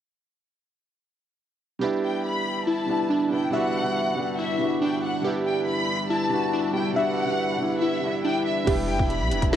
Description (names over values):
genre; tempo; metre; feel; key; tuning
hip hop, drill; 140 BPM; 4/4; half-time; E minor; A4 = 441 Hz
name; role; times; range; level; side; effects
dark baby grand piano; accompaniment; 1.8-9.6 s; G3 to G4; -27 LUFS; right 3 dB; low-pass filter
deep dark ambient pad; sustained chords; 2.7-9.6 s; D3 to B4; -33 LUFS; left 2 dB; chorus, built-in reverb
glassy digital keys; arpeggios; 1.8-9.6 s; D4 to E5; -27 LUFS; left 1 dB; chorus, low-pass filter, ping-pong delay
warm symphonic violin section; second line; 2.0-9.6 s; E5 to B5; -29 LUFS; left 2 dB; ping-pong delay
long sustained 808-style bass; bass; 8.7-9.6 s; E1 to B1; -28 LUFS; equal; none
drill drum kit; drums; 8.7-9.6 s; crash cymbal, hi-hat, kick drum, snare drum; -25 LUFS; equal; none
room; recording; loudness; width
light reverb, digital ambience; worn, warbling old tape, cassette tape, warbly pitch drift; -22 LUFS; side -10 dB against mid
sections
1.8-8.7 A section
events
none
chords
1.8 Em7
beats
| 1.82 2.24 2.67 3.10 | 3.53 3.96 4.39 4.82 | 5.24 5.67 6.10 6.53 | 6.96 7.39 7.82 8.24 | 8.67 9.10 9.53